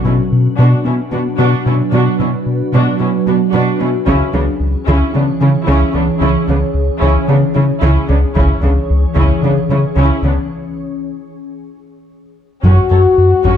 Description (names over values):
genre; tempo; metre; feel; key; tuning
cinematic, hybrid orchestral and electronic film score; 112 BPM; 4/4; straight; unclear; A4 = 440 Hz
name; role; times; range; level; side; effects
warm symphonic viola section; accompaniment; 0.0-13.6 s; B3 to C#5; -20 LUFS; right 1 dB; none
glassy FM pad; sustained chords; 0.0-13.6 s; E3 to C#5; -18 LUFS; equal; ensemble chorus, built-in reverb, phaser
smooth synth bass; riff; 0.0-13.6 s; C#2 to B3; -14 LUFS; left 1 dB; none
rich symphonic cello section; bass; 0.1-13.5 s; F#2 to C#3; -17 LUFS; right 2 dB; none
taiko ensemble; drums; 4.1-5.1, 8.4-9.4, 12.6-13.6 s; none; -22 LUFS; equal; none
warm French horn section; sustained chords; 12.6-13.6 s; F#4; -11 LUFS; left 5 dB; none
room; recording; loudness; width
moderate recital hall reverb, RT60 1.5 s; close, detailed microphones; -11 LUFS; side -9 dB against mid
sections
0.0-12.6 A section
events
build-up 0.0-12.6; break 10.5-12.6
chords
0.0 Bm; 4.1 C#m; 12.6 F#m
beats
0.32 0.86 1.39 | 1.93 2.46 3.00 3.54 | 4.07 4.61 5.14 5.68 | 6.21 6.75 7.29 7.82 | 8.36 8.89 9.43 9.96 | 10.50 11.04 11.57 12.11 | 12.64 13.18